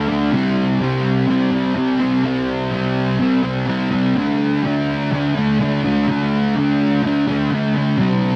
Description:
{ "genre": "rock", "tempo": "125 BPM", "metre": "4/4", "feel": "straight", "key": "unclear", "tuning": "A4 = 440 Hz", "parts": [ { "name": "thick fuzz guitar", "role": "solo", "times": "0.0-8.4 s", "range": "C3 to D4", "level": "-18 LUFS", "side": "equal", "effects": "distortion, analog chorus, analog delay" } ], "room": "light reverb", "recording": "dark, warm production, nothing above 10.3 kHz", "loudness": "-18 LUFS", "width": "mono", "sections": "0.0-8.4 A section", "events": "none", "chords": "0.3 C5; 4.2 D5" }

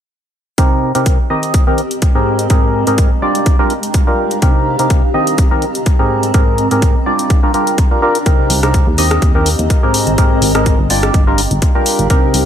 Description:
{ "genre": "piano house", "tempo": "125 BPM", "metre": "4/4", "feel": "swing 54% on 16ths", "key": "unclear", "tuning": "A4 = 441 Hz", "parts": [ { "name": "percussive organ stab", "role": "riff", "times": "0.6-12.4 s", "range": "Ab2 to Eb5", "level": "-15 LUFS", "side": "equal", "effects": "wide subtle chorus, sidechain pumping, tape echo" }, { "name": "electronic kick drum", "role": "drums", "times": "0.6-12.2 s", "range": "none", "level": "-12 LUFS", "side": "equal", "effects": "overdrive" }, { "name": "punchy analog drum machine", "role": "drums", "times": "0.6-12.4 s", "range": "hi-hat, rim click", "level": "-20 LUFS", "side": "left 2 dB", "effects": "overdrive" }, { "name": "granular cloud pad", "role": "texture", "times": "1.4-12.5 s", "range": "C4 to Bb5", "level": "-21 LUFS", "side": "right 1 dB", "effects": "built-in reverb, sidechain pumping" }, { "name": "solid FM bass", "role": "bass", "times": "8.5-12.5 s", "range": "G1 to Eb2", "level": "-16 LUFS", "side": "equal", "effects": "sidechain pumping" } ], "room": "light reverb", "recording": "none", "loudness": "-11 LUFS", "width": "side -9 dB against mid", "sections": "0.6-12.5 A section", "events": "none", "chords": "0.6 Cm7; 1.3 Abmaj9; 3.2 Gm7; 4.4 Cm7; 5.1 Abmaj9; 7.1 Gm7; 8.3 Cm7; 9.0 Eb6; 9.9 Abmaj9; 10.9 Gm7" }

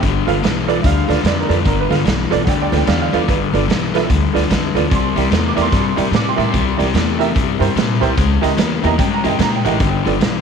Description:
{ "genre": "electric blues shuffle", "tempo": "147 BPM", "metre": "4/4", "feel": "swing 63% on 8ths", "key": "G mixolydian", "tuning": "A4 = 440 Hz", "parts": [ { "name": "honky-tonk upright piano", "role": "accompaniment", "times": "0.0-10.1 s", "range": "E4 to D6", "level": "-20 LUFS", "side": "right 12 dB", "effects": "none" }, { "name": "overdriven semi-hollow guitar", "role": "riff", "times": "0.0-10.4 s", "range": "G2 to A#3", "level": "-19 LUFS", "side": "left 14 dB", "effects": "spring reverb" }, { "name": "upright bass", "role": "bass", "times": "0.0-10.4 s", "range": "G1 to Bb2", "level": "-19 LUFS", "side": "left 1 dB", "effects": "none" }, { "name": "raw garage drum kit", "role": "drums", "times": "0.0-10.3 s", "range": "hi-hat, kick drum, snare drum", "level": "-20 LUFS", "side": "right 3 dB", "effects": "none" } ], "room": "light reverb, small room ambience", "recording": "1960s-style stereo with parts hard left and right", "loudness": "-14 LUFS", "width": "side -6 dB against mid", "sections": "0.0-10.4 A section", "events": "none", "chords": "0.0 G7; 4.9 C7; 8.2 C#dim7; 9.8 G7" }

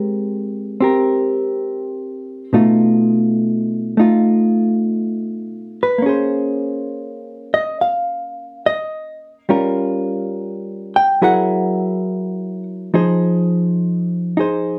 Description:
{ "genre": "jazz ballad", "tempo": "69 BPM", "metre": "4/4", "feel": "swing 68% on 8ths", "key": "unclear", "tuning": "A4 = 442 Hz", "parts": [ { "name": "hollow-body jazz guitar", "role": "solo", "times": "0.0-14.8 s", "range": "B2 to G5", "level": "-18 LUFS", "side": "equal", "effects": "none" } ], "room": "wet studio ambience, RT60 0.5 s", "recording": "band playing live in one room", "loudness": "-18 LUFS", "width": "mono", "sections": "0.0-14.8 A section", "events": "none", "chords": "0.0 Abmaj9; 2.5 B7#11; 6.0 Bbm9; 9.5 Gm7b5; 11.2 Gb9; 12.9 Fm7" }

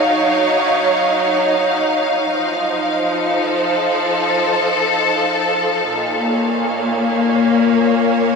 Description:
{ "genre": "ambient", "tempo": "free time", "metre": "none", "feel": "none", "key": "Bb harmonic minor", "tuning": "A4 = 441 Hz", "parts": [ { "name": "clear symphonic string section", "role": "solo", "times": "0.0-8.4 s", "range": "Bb2 to F5", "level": "-14 LUFS", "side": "left 1 dB", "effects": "ping-pong delay" } ], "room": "wet cathedral reverb, RT60 6.5 s", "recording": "in a vast, echoing space", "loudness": "-14 LUFS", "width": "side -4 dB against mid", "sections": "0.0-8.4 A section", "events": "none", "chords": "0.0 Ebm7/Gb; 2.4 F7; 5.9 Bbm" }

